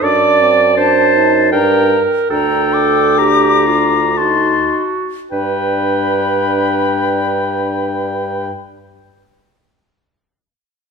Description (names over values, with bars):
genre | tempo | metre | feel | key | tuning
classical, slow romantic movement for wind quintet | 50-82 BPM | 3/4 | rubato | unclear | A4 = 440 Hz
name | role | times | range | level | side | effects
bright concert flute | melody | 0.0-8.5 s | A5 to D6 | -19 LUFS | left 6 dB | none
warm oboe | second line | 0.0-8.5 s | G5 to Bb5 | -19 LUFS | left 5 dB | none
clear French horn | accompaniment | 0.0-8.5 s | C4 to Eb4 | -21 LUFS | left 2 dB | none
warm clarinet | accompaniment | 0.0-8.5 s | F4 to D5 | -16 LUFS | right 6 dB | none
mellow bassoon | bass | 0.0-8.5 s | D2 to G2 | -20 LUFS | right 1 dB | none
room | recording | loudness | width
moderate recital hall reverb, RT60 1.5 s | minimal, uncompressed stereo recording | -12 LUFS | side -5 dB against mid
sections
0.0-5.3 A section; 5.3-8.5 B section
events
slowing down 0.0-5.3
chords
0.0 D/F#; 1.5 Gm; 2.3 Gm/D; 4.2 D7b9; 5.3 G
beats
| 0.04 0.78 1.53 | 2.31 3.19 4.18 | 5.32 6.40 7.47